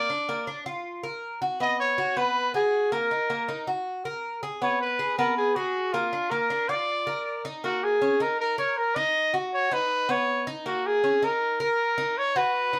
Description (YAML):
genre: latin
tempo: 159 BPM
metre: 4/4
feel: straight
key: Eb minor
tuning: A4 = 440 Hz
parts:
  - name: warm trumpet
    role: melody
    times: 0.0-12.8 s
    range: F4 to Eb5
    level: -27 LUFS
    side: equal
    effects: none
  - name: Cuban tres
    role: arpeggios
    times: 0.0-12.8 s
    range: Bb3 to Bb4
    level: -32 LUFS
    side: equal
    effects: none
room: moderate studio ambience, RT60 0.5 s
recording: heard from further back in the room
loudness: -26 LUFS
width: mono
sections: 0.0-7.6 A section; 7.6-12.8 B section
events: none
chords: 0.1 Bb; 1.6 B5; 3.1 Ebm; 4.6 Abm; 6.1 Bb; 7.6 Eb5; 9.2 Badd9; 10.7 Eb5; 12.2 Badd9